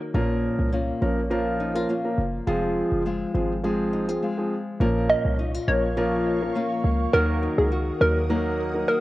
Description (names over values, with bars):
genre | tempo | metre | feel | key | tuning
dancehall | 103 BPM | 4/4 | straight | Bb minor | A4 = 439 Hz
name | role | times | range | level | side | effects
nylon-string guitar | arpeggios | 0.0-9.0 s | Bb2 to Gb4 | -28 LUFS | left 2 dB | cassette tape
dark concert grand piano | accompaniment | 0.1-8.9 s | F3 to Bb4 | -27 LUFS | right 1 dB | cassette tape
short 808-style bass | bass | 0.1-8.8 s | F1 to Eb2 | -26 LUFS | equal | none
ethereal airy pad | sustained chords | 5.5-9.0 s | Bb4 to Eb6 | -36 LUFS | right 2 dB | ensemble chorus, built-in reverb, cassette tape
hollow square pluck | melody | 5.1-9.0 s | Ab4 to Eb5 | -25 LUFS | equal | chorus, cassette tape, analog delay
room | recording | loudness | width
light reverb, studio ambience | home recording on cassette | -22 LUFS | side -17 dB against mid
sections
0.0-4.8 A section; 4.8-9.0 B section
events
none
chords
0.1 Bbm; 2.5 Fm; 4.8 Bbm; 7.1 Ebm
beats
| 0.14 0.73 1.31 1.89 | 2.47 3.06 3.64 4.22 | 4.80 5.39 5.97 6.55 | 7.13 7.72 8.30 8.88